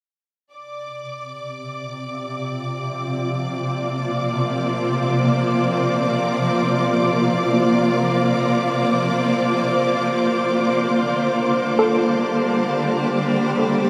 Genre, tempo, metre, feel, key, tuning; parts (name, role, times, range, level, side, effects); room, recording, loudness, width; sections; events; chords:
ambient; free time; Bb major; A4 = 441 Hz
shimmering ambient pad; sustained chords; 1.7-13.9 s; C3 to C5; -21 LUFS; equal; chorus, built-in reverb
rich symphonic violin section; texture; 0.5-13.9 s; D5 to D6; -28 LUFS; equal
soft round pluck; arpeggios; 11.8-13.9 s; A4; -26 LUFS; equal; chorus, diffuse ambient delay
wet shimmer reverb, RT60 7.6 s; -20 LUFS; mono
0.5-13.9 A section
0.5 Bbsus2; 10.0 Gm